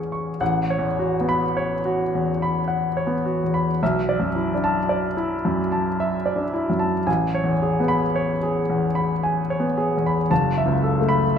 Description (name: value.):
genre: classical, impressionist solo piano.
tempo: 55 BPM.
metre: 3/4.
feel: rubato.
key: A major.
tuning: A4 = 440 Hz.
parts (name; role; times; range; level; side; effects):
clear grand piano; solo; 0.0-11.4 s; F#1 to C#7; -20 LUFS; equal; none.
room: wet recital hall reverb, RT60 1.6 s.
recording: none.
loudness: -20 LUFS.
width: side -8 dB against mid.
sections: 0.4-11.4 A section.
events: none.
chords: 0.4 A69; 3.8 Bm7; 7.1 Amaj9; 10.3 F#m7.